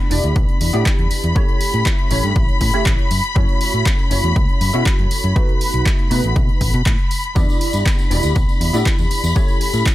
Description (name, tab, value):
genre	filtered disco house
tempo	120 BPM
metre	4/4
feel	straight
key	E dorian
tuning	A4 = 443 Hz
part	funky polysynth comp	accompaniment	0.0-9.9 s	A3 to D5	-24 LUFS	right 1 dB	chorus, phaser, sidechain pumping
part	rich studio string section	sustained chords	0.0-9.9 s	B5	-24 LUFS	left 2 dB	sidechain pumping
part	fingered electric bass	bass	0.1-9.8 s	E1 to B2	-19 LUFS	equal	sidechain pumping
part	punchy analog drum machine	drums	0.1-9.9 s	handclaps, hi-hat	-25 LUFS	right 1 dB	overdrive, sidechain pumping on hats, sidechain pumping on cymbals
part	electronic kick drum	drums	0.4-9.9 s	none	-17 LUFS	equal	overdrive
part	tambourine	percussion	7.4-9.9 s	none	-34 LUFS	equal	sidechain pumping on perc
room	digital ambience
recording	none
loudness	-14 LUFS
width	side -15 dB against mid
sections	0.0-9.9 A section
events	none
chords	0.0 Em7; 1.4 A7; 3.1 F#m7; 5.4 B7; 7.4 Em7; 9.4 A7